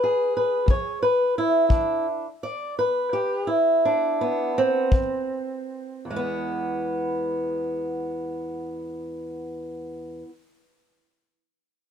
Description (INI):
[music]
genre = acoustic country blues, solo or duo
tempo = 52-59 BPM (dotted quarters)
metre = 12/8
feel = straight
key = E mixolydian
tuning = A4 = 440 Hz
[part]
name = fingerpicked swing-style acoustic guitar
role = melody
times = 0.0-10.3 s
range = E2 to D5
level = -23 LUFS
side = equal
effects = none
[part]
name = kick drum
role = drums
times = 0.7-5.1 s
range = none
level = -20 LUFS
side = left 2 dB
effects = none
[sound]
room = light reverb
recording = dark, warm production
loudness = -22 LUFS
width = side -8 dB against mid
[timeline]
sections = 0.0-6.0 A section; 6.0-10.7 B section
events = slowing down 0.3-6.0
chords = 0.0 N.C.; 1.7 E5; 4.9 N.C.; 6.0 E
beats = 0.68 | 1.70 2.74 3.81 4.90 | 6.04 7.20 8.37 9.53